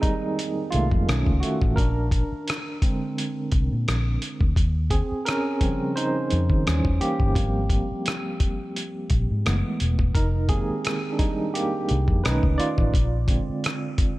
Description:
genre	R&B, neo-soul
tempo	86 BPM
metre	4/4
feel	swing 54% on 16ths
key	unclear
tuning	A4 = 440 Hz
part	barky tine electric piano	accompaniment	0.0-14.2 s	Db3 to D5	-26 LUFS	right 2 dB	overdrive, medium tremolo
part	dusty soul sampler-style drum kit	drums	0.0-14.2 s	hi-hat, kick drum, rim click	-24 LUFS	equal	none
part	vintage muted fingered electric bass	bass	0.7-13.5 s	Fb1 to Eb3	-24 LUFS	equal	none
room	light reverb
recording	none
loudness	-21 LUFS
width	side -18 dB against mid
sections	0.0-14.2 A section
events	tine electric piano solo 0.0-14.2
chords	0.0 Fm11; 1.1 B9; 1.8 Bb9; 4.6 Eb13; 6.7 Eb7b9; 7.4 Abmaj13; 9.4 Gbm11; 10.1 Fm11; 12.2 B9; 12.9 Bb9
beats	0.38 1.08 | 1.77 2.47 3.17 3.87 | 4.57 5.26 5.96 6.66 | 7.36 8.05 8.75 9.45 | 10.15 10.84 11.54 12.24 | 12.94 13.63

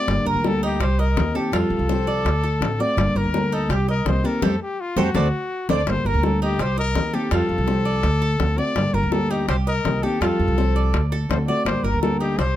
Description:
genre	latin, Cuban son and guajira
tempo	166 BPM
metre	4/4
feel	straight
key	G minor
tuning	A4 = 441 Hz
part	breathy trumpet	melody	0.0-12.6 s	F4 to D5	-25 LUFS	left 3 dB	none
part	nylon-string guitar	accompaniment	0.0-12.4 s	D3 to G4	-24 LUFS	left 1 dB	none
part	Cuban tres	arpeggios	0.0-12.6 s	Eb4 to Eb5	-28 LUFS	right 4 dB	none
part	upright bass	bass	0.1-12.6 s	G1 to F2	-22 LUFS	right 1 dB	none
part	bongos	percussion	0.1-12.6 s	none	-27 LUFS	left 5 dB	none
room	little or no reverb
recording	close, detailed microphones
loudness	-19 LUFS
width	side -12 dB against mid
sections	0.0-5.9 A section; 5.9-12.6 A section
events	band accent 4.4-5.9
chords	0.1 Gm; 0.8 Cm7; 1.5 Fadd9; 2.3 D7; 3.0 Gm; 3.7 Cm7; 4.4 Fadd9; 5.2 D7; 5.9 Gm; 6.6 Cm7; 7.3 Fadd9; 8.0 D7; 8.8 Gm; 9.5 Cm7; 10.2 Fadd9; 10.9 D7; 11.7 Gm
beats	| 0.08 0.45 0.81 1.17 | 1.53 1.89 2.26 2.62 | 2.98 3.34 3.70 4.07 | 4.43 4.79 5.15 5.51 | 5.88 6.24 6.60 6.96 | 7.32 7.68 8.04 8.41 | 8.77 9.13 9.49 9.85 | 10.22 10.58 10.94 11.30 | 11.66 12.03 12.39

